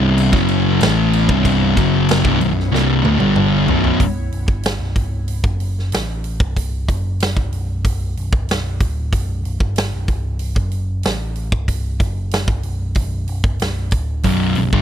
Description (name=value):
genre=stoner and doom metal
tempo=94 BPM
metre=4/4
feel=straight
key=B minor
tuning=A4 = 440 Hz
part: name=organ-like drone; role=sustained chords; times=0.0-4.0, 14.3-14.8 s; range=B3 to C#5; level=-29 LUFS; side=right 4 dB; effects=ensemble chorus, built-in reverb
part: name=thick fuzz guitar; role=riff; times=0.0-4.0, 14.3-14.8 s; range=B1 to A3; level=-16 LUFS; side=left 8 dB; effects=distortion
part: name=thick fuzz guitar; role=riff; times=0.0-4.0, 14.2-14.8 s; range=B1 to A3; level=-18 LUFS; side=right 12 dB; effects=distortion
part: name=overdriven picked electric bass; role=bass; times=0.0-14.8 s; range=B0 to A1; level=-21 LUFS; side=equal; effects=none
part: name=big rock drum kit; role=drums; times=0.2-14.8 s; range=crash cymbal, hi-hat, kick drum, snare drum, toms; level=-20 LUFS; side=equal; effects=none
room=little or no reverb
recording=dry, close 1970s-style studio recording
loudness=-15 LUFS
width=side -10 dB against mid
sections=0.0-4.0 A section; 4.0-14.8 B section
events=drum fill 2.7-4.0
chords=0.0 Bm; 4.0 B5